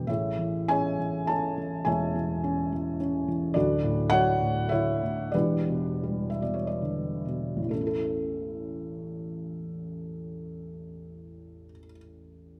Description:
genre	classical, lyrical solo piano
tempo	63-108 BPM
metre	3/4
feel	rubato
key	A major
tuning	A4 = 444 Hz
part	felt-muted upright piano	solo	0.0-12.6 s	D1 to A5	-29 LUFS	equal	none
room	light reverb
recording	none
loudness	-29 LUFS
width	mono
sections	0.0-7.7 A section; 7.7-12.6 B section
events	slowing down 3.6-7.7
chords	0.1 Amaj7; 3.6 Dmaj7; 5.3 Em7; 7.7 A

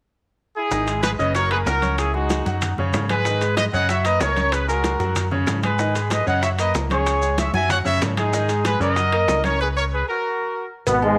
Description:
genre	latin, salsa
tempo	189 BPM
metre	4/4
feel	straight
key	unclear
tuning	A4 = 440 Hz
part	warm trumpet section	melody	0.6-10.7 s	D#4 to G#5	-24 LUFS	equal	slapback echo
part	bright grand piano	accompaniment	0.7-11.1 s	B2 to C#6	-29 LUFS	equal	none
part	fingered electric bass	bass	0.7-11.2 s	F#1 to G#2	-26 LUFS	equal	none
part	bongos and cowbell	percussion	0.7-11.0 s	none	-32 LUFS	equal	none
part	congas	percussion	0.7-11.2 s	none	-34 LUFS	equal	none
part	maracas	percussion	0.7-11.0 s	none	-39 LUFS	equal	none
part	timbales and agogo bells	percussion	0.9-11.2 s	none	-33 LUFS	equal	none
part	bright trombone section	melody	10.9-11.2 s	G#2 to B3	-19 LUFS	equal	none
room	light reverb, small room ambience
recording	none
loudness	-21 LUFS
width	mono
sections	0.7-10.9 A section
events	stop 9.6-10.9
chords	0.0 N.C.; 0.7 G#m; 1.4 F#; 2.0 C#m; 2.6 F#5; 3.3 G#m; 3.9 F#; 4.5 C#5; 5.2 F#5; 5.8 G#m; 6.4 F#; 7.1 C#m; 7.7 F#5; 8.3 G#5; 9.0 F#; 9.6 C#5; 10.2 N.C.

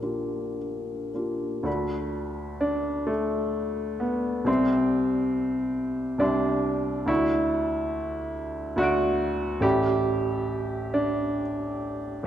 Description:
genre	classical, impressionist solo piano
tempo	52-73 BPM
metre	3/4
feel	rubato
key	unclear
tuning	A4 = 435 Hz
part	clear baby grand piano	solo	0.0-12.3 s	Gb1 to D7	-24 LUFS	equal	none
room	moderate concert hall reverb, RT60 2.2 s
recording	dark, warm production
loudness	-24 LUFS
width	side -10 dB against mid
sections	0.0-1.7 A section; 1.7-12.3 B section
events	none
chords	0.0 Bb6; 1.7 D6; 4.5 Cadd9; 7.1 Dmaj9; 9.6 A11

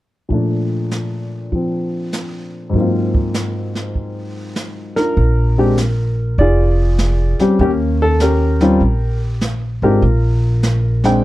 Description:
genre	jazz piano trio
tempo	99 BPM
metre	4/4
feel	swing 67% on 8ths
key	Bb major, Bb mixolydian from 5.2 s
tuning	A4 = 435 Hz
part	warm baby grand piano	melody	0.3-11.2 s	Ab2 to G5	-17 LUFS	left 1 dB	none
part	jazz brush drum kit	drums	0.3-11.2 s	brushed snare drum, hi-hat, kick drum, snare drum	-22 LUFS	right 2 dB	none
part	upright bass	bass	5.2-11.2 s	F1 to Eb2	-15 LUFS	equal	none
room	little or no reverb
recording	dark, warm production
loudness	-14 LUFS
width	side -16 dB against mid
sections	0.3-5.2 A section; 5.2-11.2 B section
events	none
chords	0.3 Bbmaj7; 2.7 Ab13; 5.2 Bb13; 7.6 Eb7; 10.0 Bb5

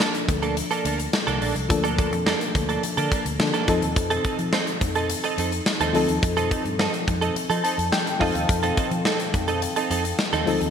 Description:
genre	1980s-style pop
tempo	106 BPM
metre	4/4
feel	straight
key	unclear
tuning	A4 = 439 Hz
part	FM electric piano	accompaniment	0.0-10.7 s	F3 to A5	-26 LUFS	left 4 dB	chorus
part	direct-recorded clean electric guitar	riff	0.0-10.7 s	Bb3 to A4	-26 LUFS	right 6 dB	analog chorus, digital delay
part	big rock drum kit	drums	0.0-10.7 s	hi-hat, kick drum, snare drum	-25 LUFS	equal	gated reverb
part	vintage muted fingered electric bass	bass	0.3-10.7 s	Bb1 to F3	-29 LUFS	equal	none
room	moderate lush hall reverb, RT60 1.9 s, studio ambience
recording	bright 1980s-style digital production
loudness	-21 LUFS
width	side -7 dB against mid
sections	0.0-10.7 A section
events	FM electric piano fill 7.4-8.5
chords	0.0 Bbmaj7; 3.7 F7

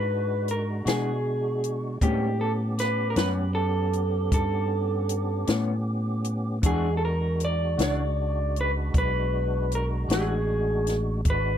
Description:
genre	slow blues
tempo	52 BPM (dotted quarters)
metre	12/8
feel	straight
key	E mixolydian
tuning	A4 = 442 Hz
part	electric guitar through a small old amp	melody	0.0-11.6 s	G4 to D5	-28 LUFS	right 1 dB	spring reverb
part	tonewheel organ	sustained chords	0.0-11.6 s	G#3 to G4	-35 LUFS	right 1 dB	slow rotary speaker, overdrive, chorus vibrato
part	fingered electric bass	bass	0.0-11.6 s	G#1 to B2	-27 LUFS	equal	none
part	compact cocktail drum kit	drums	0.5-11.4 s	hi-hat, kick drum, snare drum	-26 LUFS	left 1 dB	none
part	electric guitar through a small old amp	accompaniment	0.9-10.3 s	A2 to F#4	-30 LUFS	left 5 dB	harmonic tremolo
room	little or no reverb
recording	dry, close 1970s-style studio recording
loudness	-23 LUFS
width	side -9 dB against mid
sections	0.0-11.6 A section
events	none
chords	0.0 E9 (rootless); 2.0 A9; 6.6 E9

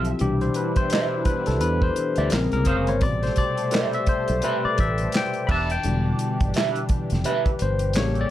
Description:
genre	R&B, neo-soul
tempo	85 BPM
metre	4/4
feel	swing 60% on 16ths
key	unclear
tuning	A4 = 437 Hz
part	electric guitar through a small old amp	second line	0.0-8.0 s	C4 to F5	-27 LUFS	right 6 dB	wah
part	barky tine electric piano	accompaniment	0.0-8.3 s	B2 to B5	-24 LUFS	left 3 dB	phaser
part	warm analog pad	sustained chords	0.0-8.3 s	B2 to E5	-32 LUFS	right 1 dB	chorus, phaser
part	fingered electric bass	bass	0.0-8.2 s	E1 to E2	-25 LUFS	right 1 dB	none
part	warm soul drum kit	drums	0.0-8.3 s	crash cymbal, handclaps, hi-hat, kick drum, snare drum	-25 LUFS	equal	none
room	moderate studio reverb, RT60 0.6 s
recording	none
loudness	-20 LUFS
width	side -13 dB against mid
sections	0.0-8.3 A section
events	tine electric piano solo 0.0-8.3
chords	0.2 Cmaj9; 2.3 Bbm9; 3.0 Am9; 5.5 Em7

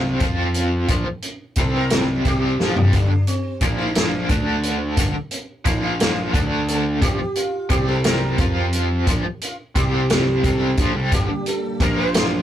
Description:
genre	psychedelic rock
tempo	59 BPM (dotted quarters)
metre	6/8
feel	straight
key	unclear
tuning	A4 = 440 Hz
part	sitar	melody	0.0-12.4 s	C4 to C5	-27 LUFS	right 2 dB	none
part	cranked stack guitar	riff	0.0-12.4 s	G2 to F4	-23 LUFS	equal	overdrive, tremolo
part	fuzz picked electric bass	bass	0.0-12.4 s	G1 to F2	-23 LUFS	equal	overdrive
part	vintage drum kit	drums	0.2-12.3 s	hi-hat, kick drum, snare drum, toms	-21 LUFS	equal	none
part	string machine, cellos	sustained chords	11.1-12.4 s	G3 to G4	-28 LUFS	right 1 dB	ensemble chorus
room	moderate booth ambience, RT60 0.2 s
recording	rough rehearsal-room recording, tube saturation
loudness	-18 LUFS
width	side -11 dB against mid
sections	0.0-12.4 A section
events	sitar solo 0.0-12.4; drum fill 2.6-2.9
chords	0.2 F5; 0.9 Bb5; 1.6 C5; 2.3 Bb5; 2.9 G5; 3.6 Bb5; 4.3 D5; 5.0 G5; 5.7 Bb5; 6.3 D5; 7.0 Bb5; 7.7 C5; 8.4 F5; 9.1 Bb5; 9.8 C5; 10.4 Bb5; 11.1 Gm; 11.8 Bb5

